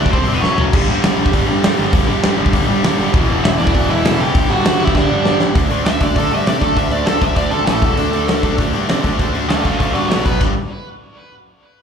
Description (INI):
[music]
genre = punk rock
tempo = 198 BPM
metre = 4/4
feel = straight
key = G major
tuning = A4 = 440 Hz
[part]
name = nasal lead guitar with a parked wah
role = melody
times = 0.0-0.6, 3.4-10.4 s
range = B3 to G5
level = -21 LUFS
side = right 2 dB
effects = overdrive, slapback echo, digital delay
[part]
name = distorted electric guitar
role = riff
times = 0.0-10.5 s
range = E2 to D4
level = -20 LUFS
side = left 14 dB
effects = overdrive, slapback echo
[part]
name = scooped high-gain guitar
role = riff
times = 0.0-5.6 s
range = E2 to D4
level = -23 LUFS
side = right 1 dB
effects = distortion, slapback echo
[part]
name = modern bright picked electric bass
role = bass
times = 0.0-10.5 s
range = E1 to C3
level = -22 LUFS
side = equal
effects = none
[part]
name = big rock drum kit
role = drums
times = 0.1-10.5 s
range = crash cymbal, hi-hat, kick drum, snare drum, toms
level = -17 LUFS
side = equal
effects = none
[part]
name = raw garage guitar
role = riff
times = 0.7-10.5 s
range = E2 to D4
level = -21 LUFS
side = right 15 dB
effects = overdrive, slapback echo
[sound]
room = little or no reverb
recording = live gig heard through the venue's PA, club reverb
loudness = -13 LUFS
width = side -7 dB against mid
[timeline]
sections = 0.0-5.5 A section; 5.5-10.4 B section; 10.4-11.6 C section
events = drum fill 0.4-0.7, 4.9-5.5; lead electric guitar solo 5.5-10.4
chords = 0.1 C5; 0.4 F#5; 0.7 G5; 3.1 Em; 4.3 G5; 5.5 D5; 7.7 A5; 7.8 E5; 8.0 D5; 10.1 B5; 10.4 G5